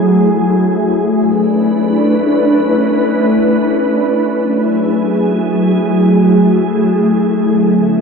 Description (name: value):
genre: hip hop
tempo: free time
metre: none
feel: none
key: F# minor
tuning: A4 = 438 Hz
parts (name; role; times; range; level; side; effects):
- glassy FM pad; solo; 0.0-8.0 s; D3 to B4; -10 LUFS; equal; ensemble chorus, built-in reverb, digital delay
room: wet studio reverb, RT60 0.6 s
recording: none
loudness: -10 LUFS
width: side -5 dB against mid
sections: 0.0-4.3 A section; 4.3-8.0 B section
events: none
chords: 0.0 F#m9; 1.0 Bm11; 4.3 F#m9; 7.5 Bm11